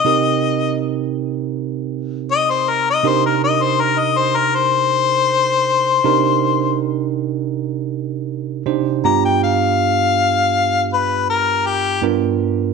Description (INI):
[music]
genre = blues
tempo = 80 BPM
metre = 4/4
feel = straight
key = C minor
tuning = A4 = 440 Hz
[part]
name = warm harmonica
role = melody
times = 0.0-12.0 s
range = G4 to A#5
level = -16 LUFS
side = left 7 dB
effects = none
[part]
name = bell-like tine electric piano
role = accompaniment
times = 0.0-12.7 s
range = G2 to C5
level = -19 LUFS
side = right 11 dB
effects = none
[sound]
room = wet echo chamber reverb, RT60 1.3 s, small room ambience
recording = 1960s-style stereo with parts hard left and right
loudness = -15 LUFS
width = side -4 dB against mid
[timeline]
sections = 0.0-12.7 A section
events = none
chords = 0.0 Cm7; 9.0 G7#9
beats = | 0.06 0.81 1.56 2.30 | 3.05 3.80 4.55 5.30 | 6.04 6.79 7.54 8.29 | 9.04 9.79 10.53 11.28 | 12.03